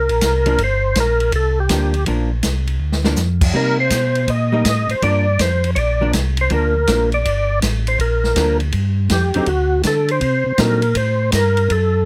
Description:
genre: soul jazz organ trio.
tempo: 162 BPM.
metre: 4/4.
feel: swing 66% on 8ths.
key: G minor.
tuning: A4 = 440 Hz.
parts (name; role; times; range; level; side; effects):
percussive tonewheel organ; melody; 0.0-12.1 s; F#4 to Eb5; -21 LUFS; equal; slow rotary speaker, overdrive, chorus vibrato.
mellow tonewheel organ; bass; 0.0-12.1 s; G1 to D3; -21 LUFS; equal; slow rotary speaker.
open jazz drum kit; drums; 0.1-11.8 s; crash cymbal, hi-hat, kick drum, ride cymbal, snare drum; -24 LUFS; equal; none.
archtop guitar, miked and amplified; accompaniment; 0.5-10.8 s; D3 to Eb4; -24 LUFS; equal; none.
room: little or no reverb.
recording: close, detailed microphones.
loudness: -17 LUFS.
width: mono.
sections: 0.0-12.1 A section.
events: drum fill 2.8-3.2.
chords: 0.0 C7(no3); 0.6 Gm7; 3.5 Cm7; 5.0 Gm7; 9.5 D7.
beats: 0.22 | 0.59 0.96 1.33 1.70 | 2.07 2.44 2.81 3.18 | 3.55 3.92 4.29 4.66 | 5.03 5.40 5.77 6.14 | 6.51 6.88 7.25 7.62 | 7.99 8.36 8.73 9.10 | 9.47 9.84 10.21 10.59 | 10.96 11.33 11.70.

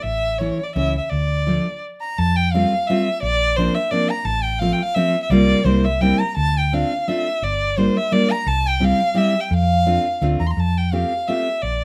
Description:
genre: musette waltz.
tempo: 171 BPM.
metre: 3/4.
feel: rubato.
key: F major.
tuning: A4 = 439 Hz.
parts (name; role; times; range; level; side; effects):
warm violin; melody; 0.0-11.8 s; C5 to C6; -23 LUFS; equal; none.
hollow-body short-scale fingered electric bass; bass; 0.0-11.8 s; G1 to F2; -23 LUFS; equal; none.
fingerpicked steel-string acoustic guitar; accompaniment; 0.4-11.5 s; E3 to G4; -22 LUFS; equal; none.
room: moderate studio reverb, RT60 0.6 s.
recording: none.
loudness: -19 LUFS.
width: mono.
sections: 0.0-2.2 A section; 2.2-10.6 B section; 10.6-11.8 B section.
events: stop 1.8-2.2.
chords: 0.0 A; 1.1 Dm; 2.2 Fadd9; 3.2 Bbadd9; 4.3 F/A; 5.3 C7sus4; 5.7 C7; 6.4 Dm7; 7.4 Gm7; 8.5 C; 9.5 F6; 10.6 Fadd9.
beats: | 0.05 0.40 0.75 | 1.10 1.46 1.82 | 2.18 2.53 2.88 | 3.23 3.57 3.91 | 4.26 4.61 4.96 | 5.31 5.66 6.02 | 6.37 6.73 7.08 | 7.43 7.78 8.12 | 8.46 8.81 9.16 | 9.51 9.86 10.22 | 10.58 10.93 11.29 | 11.64.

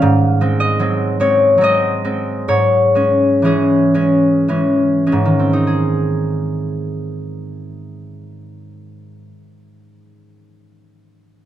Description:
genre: classical, solo harp piece.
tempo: 49-78 BPM.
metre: 3/4.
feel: rubato.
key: Ab major.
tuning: A4 = 440 Hz.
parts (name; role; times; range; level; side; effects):
concert harp; solo; 0.0-9.8 s; Ab2 to F5; -14 LUFS; equal; none.
room: light reverb.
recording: close, detailed microphones.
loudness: -13 LUFS.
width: side -12 dB against mid.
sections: 0.0-5.7 A section; 5.7-9.2 B section.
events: slowing down 0.0-5.7.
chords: 0.0 Ab7; 2.5 Dbm/Ab; 5.7 Ab.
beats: | 0.01 0.80 1.61 | 2.49 3.44 4.50 | 5.68 6.83 8.00.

